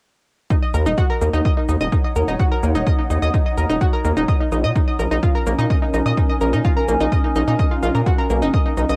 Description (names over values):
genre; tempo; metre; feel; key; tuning
melodic techno; 127 BPM; 4/4; straight; Eb minor; A4 = 439 Hz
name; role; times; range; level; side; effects
analog pluck; arpeggios; 0.5-9.0 s; Bb3 to Eb5; -24 LUFS; equal; lush chorus, sidechain pumping, cassette tape, analog delay
electronic kick drum; drums; 0.5-8.6 s; none; -21 LUFS; equal; none
shaker; drums; 0.5-9.0 s; none; -46 LUFS; equal; none
granular cloud pad; texture; 1.3-9.0 s; Db4 to Ab5; -29 LUFS; equal; built-in reverb, sidechain pumping, cassette tape
gritty driven synth bass; bass; 0.7-9.0 s; Eb1 to Bb2; -22 LUFS; equal; sidechain pumping
room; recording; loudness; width
light reverb, digital ambience; home recording on cassette; -19 LUFS; mono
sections
0.5-9.0 A section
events
none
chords
0.5 Ebm7; 4.3 Bbm7; 8.1 B